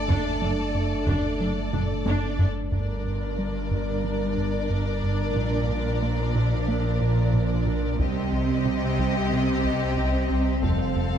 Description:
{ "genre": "cinematic, hybrid orchestral and electronic film score", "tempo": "91 BPM", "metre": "4/4", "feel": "straight", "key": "G minor", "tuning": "A4 = 440 Hz", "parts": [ { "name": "rich studio violin section", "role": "melody", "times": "0.0-11.2 s", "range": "D5 to F5", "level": "-36 LUFS", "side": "left 3 dB", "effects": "none" }, { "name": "rich studio violin section", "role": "second line", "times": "0.0-11.2 s", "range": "G4 to Bb4", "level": "-34 LUFS", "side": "left 2 dB", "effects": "none" }, { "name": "mellow French horn section", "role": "sustained chords", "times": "0.0-2.4 s", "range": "A3 to D4", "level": "-34 LUFS", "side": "left 1 dB", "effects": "none" }, { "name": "warbly tape-like pad", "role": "sustained chords", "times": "0.0-11.2 s", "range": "F3 to F5", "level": "-30 LUFS", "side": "equal", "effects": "chorus, built-in reverb" }, { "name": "warm sub bass", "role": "bass", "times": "0.0-11.2 s", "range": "F1 to C2", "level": "-31 LUFS", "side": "left 1 dB", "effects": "none" }, { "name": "clear symphonic viola section", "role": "accompaniment", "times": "0.1-11.2 s", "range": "C4 to D4", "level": "-36 LUFS", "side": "left 1 dB", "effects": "none" }, { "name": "rubbery square bass", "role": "riff", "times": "0.1-11.2 s", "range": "C2 to Bb3", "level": "-29 LUFS", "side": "right 1 dB", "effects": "none" }, { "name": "dark symphonic double bass section", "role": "bass", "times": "0.1-11.2 s", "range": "F1 to C2", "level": "-30 LUFS", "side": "right 2 dB", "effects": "none" }, { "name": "rich symphonic cello section", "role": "bass", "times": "0.1-11.2 s", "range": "F2 to C3", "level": "-31 LUFS", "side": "right 3 dB", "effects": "none" }, { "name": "taiko ensemble", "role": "drums", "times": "0.1-4.0, 8.0-11.2 s", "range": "none", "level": "-29 LUFS", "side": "equal", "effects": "none" } ], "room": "moderate scoring stage reverb, RT60 1.8 s", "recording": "none", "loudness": "-22 LUFS", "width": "side -9 dB against mid", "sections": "0.0-2.7 A section; 2.7-11.2 B section", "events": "drum fill 1.7-2.7", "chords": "0.0 D/F#; 2.7 Gm; 5.4 Bb; 8.0 Cm; 10.6 F" }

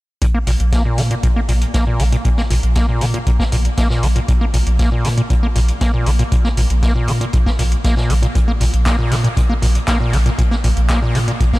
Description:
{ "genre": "acid house", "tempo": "118 BPM", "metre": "4/4", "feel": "straight", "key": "unclear", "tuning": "A4 = 441 Hz", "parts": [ { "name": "acid bass, square", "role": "riff", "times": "0.2-11.6 s", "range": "Bb2 to Bb3", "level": "-20 LUFS", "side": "equal", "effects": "overdrive, diffuse ambient delay" }, { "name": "booming analog drum machine", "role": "drums", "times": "0.2-11.5 s", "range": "handclaps, hi-hat", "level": "-26 LUFS", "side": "equal", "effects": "none" }, { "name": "electronic kick drum", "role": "drums", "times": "0.2-11.6 s", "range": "none", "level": "-17 LUFS", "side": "equal", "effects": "none" }, { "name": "jazz brush drum kit", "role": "drums", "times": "0.2-11.6 s", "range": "hi-hat, snare drum", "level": "-31 LUFS", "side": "equal", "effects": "sidechain pumping on hats, high-pass filter on hats, high-pass filter on snare, high-pass filter on room" }, { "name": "saturated sub bass", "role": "bass", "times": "0.5-11.3 s", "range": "Bb1 to Bb2", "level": "-16 LUFS", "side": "equal", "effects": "sidechain pumping" } ], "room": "light reverb, small room ambience", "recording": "none", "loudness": "-14 LUFS", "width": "side -19 dB against mid", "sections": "0.2-11.6 A section", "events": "none", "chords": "none" }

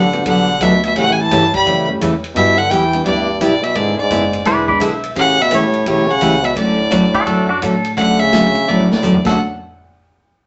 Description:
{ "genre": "country, western swing", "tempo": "171 BPM", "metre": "4/4", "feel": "swing 64% on 8ths", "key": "D major", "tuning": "A4 = 436 Hz", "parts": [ { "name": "clear fiddle", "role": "melody", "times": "0.0-9.4 s", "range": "C#5 to B5", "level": "-19 LUFS", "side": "equal", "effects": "none" }, { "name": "warm French horn", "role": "second line", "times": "0.0-9.4 s", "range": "G2 to G3", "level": "-22 LUFS", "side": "equal", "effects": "none" }, { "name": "picked steel-string acoustic guitar", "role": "accompaniment", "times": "0.0-9.4 s", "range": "C#3 to G#4", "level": "-20 LUFS", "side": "equal", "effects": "none" }, { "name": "upright bass", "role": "bass", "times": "0.0-9.4 s", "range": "E1 to A2", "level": "-27 LUFS", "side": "equal", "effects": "none" }, { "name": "warm upright piano", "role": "accompaniment", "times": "0.1-9.4 s", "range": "F#3 to G#4", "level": "-27 LUFS", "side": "equal", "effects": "none" }, { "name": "swinging big-band drum kit", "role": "drums", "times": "0.1-9.3 s", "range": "crash cymbal, hi-hat, kick drum, ride cymbal, snare drum, toms", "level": "-28 LUFS", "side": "equal", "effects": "none" }, { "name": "clean lap steel guitar", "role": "second line", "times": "4.5-9.4 s", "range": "D4 to E5", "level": "-20 LUFS", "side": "equal", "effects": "none" } ], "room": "wet studio reverb, RT60 0.7 s", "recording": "nothing above 8.0 kHz", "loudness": "-15 LUFS", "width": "mono", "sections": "0.0-8.0 A section; 8.0-9.4 B section; 9.4-10.5 C section", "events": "drum fill 8.7-9.4", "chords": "0.0 Gmaj7; 1.0 A7; 2.4 G6; 3.8 E7; 5.2 A7; 6.6 Dmaj7; 9.4 N.C." }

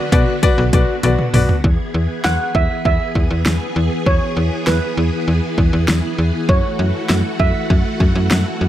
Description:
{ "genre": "synth-pop", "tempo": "99 BPM", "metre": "4/4", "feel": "straight", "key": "unclear", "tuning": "A4 = 439 Hz", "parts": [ { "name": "string machine, violins", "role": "sustained chords", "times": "0.0-8.7 s", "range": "D3 to G#4", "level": "-23 LUFS", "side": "equal", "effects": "ensemble chorus" }, { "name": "warm baby grand piano", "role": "accompaniment", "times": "0.1-1.5 s", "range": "F#4 to D5", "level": "-19 LUFS", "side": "left 4 dB", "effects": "none" }, { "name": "slap-like FM bass", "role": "bass", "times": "0.1-8.7 s", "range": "B1 to B2", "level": "-17 LUFS", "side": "equal", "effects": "none" }, { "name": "deep house drum kit", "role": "drums", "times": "0.1-8.4 s", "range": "hi-hat, kick drum, snare drum, toms", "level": "-17 LUFS", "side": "equal", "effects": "none" }, { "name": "steel pan", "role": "melody", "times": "2.2-8.7 s", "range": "B4 to F#5", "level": "-22 LUFS", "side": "right 4 dB", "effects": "tape echo" } ], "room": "little or no reverb", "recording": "none", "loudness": "-14 LUFS", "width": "side -12 dB against mid", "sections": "0.0-1.6 A section; 1.6-8.7 B section", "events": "drum fill 1.0-1.6", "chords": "0.0 Bm; 1.6 E; 6.5 F#m7" }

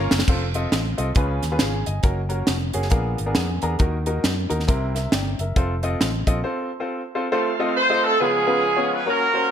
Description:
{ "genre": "uptempo gospel", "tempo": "136 BPM", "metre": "4/4", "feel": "swing 61% on 8ths", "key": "unclear", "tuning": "A4 = 440 Hz", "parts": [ { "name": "clear upright piano", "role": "accompaniment", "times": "0.0-9.5 s", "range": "Bb2 to Bb5", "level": "-25 LUFS", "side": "left 1 dB", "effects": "none" }, { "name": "bright tonewheel organ", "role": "sustained chords", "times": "0.0-0.2, 7.3-9.5 s", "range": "E3 to Ab4", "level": "-30 LUFS", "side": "right 2 dB", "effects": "slow rotary speaker, overdrive" }, { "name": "fingered electric bass", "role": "bass", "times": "0.0-6.4 s", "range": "F1 to Gb2", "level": "-25 LUFS", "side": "equal", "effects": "none" }, { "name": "crisp fusion drum kit", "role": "drums", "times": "0.1-6.4 s", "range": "crash cymbal, hi-hat, kick drum, snare drum", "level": "-22 LUFS", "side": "equal", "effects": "gated reverb" }, { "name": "clear horn section", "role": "melody", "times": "7.8-9.5 s", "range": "Cb4 to C5", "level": "-18 LUFS", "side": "right 1 dB", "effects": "none" } ], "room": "moderate plate reverb, RT60 1.6 s, studio reverb", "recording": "bright 1980s-style digital production", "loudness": "-19 LUFS", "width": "side -9 dB against mid", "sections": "0.3-7.3 A section; 7.3-9.5 B section", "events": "drum fill 0.0; upright piano fill 2.5-3.8; break 6.4-7.3", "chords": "0.3 F; 1.2 Db7; 2.0 Gb; 2.9 Bb7b9; 3.8 Ebm; 4.7 C7; 5.6 F; 8.2 Db7" }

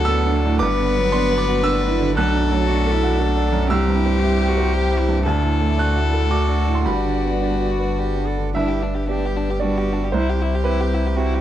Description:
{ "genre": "neoclassical piano and strings", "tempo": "115 BPM", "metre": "3/4", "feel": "rubato", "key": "G major", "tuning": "A4 = 440 Hz", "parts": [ { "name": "warm violin", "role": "melody", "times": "0.0-11.4 s", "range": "D4 to B4", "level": "-24 LUFS", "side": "left 8 dB", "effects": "none" }, { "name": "clear cello", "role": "second line", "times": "0.0-11.4 s", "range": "A3 to A4", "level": "-27 LUFS", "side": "right 5 dB", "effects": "tape echo" }, { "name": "clear baby grand piano", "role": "accompaniment", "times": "0.0-11.4 s", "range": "B1 to F#6", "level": "-22 LUFS", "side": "right 5 dB", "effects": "none" }, { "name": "warm chamber string section", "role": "sustained chords", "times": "0.0-11.4 s", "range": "G3 to D5", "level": "-30 LUFS", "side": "equal", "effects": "none" }, { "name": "pure sine sub bass", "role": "bass", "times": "0.0-11.4 s", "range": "G1 to D2", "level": "-22 LUFS", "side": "left 1 dB", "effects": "none" } ], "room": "little or no reverb", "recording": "dry, close 1970s-style studio recording", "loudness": "-17 LUFS", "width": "side -11 dB against mid", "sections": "0.0-8.6 A section; 8.6-11.4 B section", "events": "none", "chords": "0.0 D; 0.6 Gmaj7; 2.2 Bm7; 3.7 C; 5.3 D; 6.9 Gmaj7; 8.6 G; 10.1 Cmaj7" }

